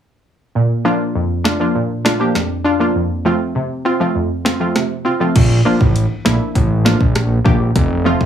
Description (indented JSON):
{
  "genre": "dancehall",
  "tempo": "100 BPM",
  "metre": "4/4",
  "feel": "straight",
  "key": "unclear",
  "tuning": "A4 = 440 Hz",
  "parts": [
    { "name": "glassy wavetable pluck", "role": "accompaniment", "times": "0.6-8.2 s", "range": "F2 to G4", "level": "-16 LUFS", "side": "equal", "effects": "chorus, sidechain pumping" },
    { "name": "afro-pop drum kit", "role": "drums", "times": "1.5-8.3 s", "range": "crash cymbal, hi-hat, kick drum, rim click, snare drum", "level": "-16 LUFS", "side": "equal", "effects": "none" },
    { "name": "fat analog bass", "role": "bass", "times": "5.4-8.3 s", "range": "F1 to Bb1", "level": "-15 LUFS", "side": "equal", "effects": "none" }
  ],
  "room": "light reverb",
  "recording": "heavily compressed radio sound, multiband compression, small room reverb",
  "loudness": "-14 LUFS",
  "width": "side -9 dB against mid",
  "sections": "0.6-5.4 A section; 5.4-8.3 B section",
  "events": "none",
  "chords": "0.6 Bb; 3.0 F; 5.4 Bb; 7.8 F"
}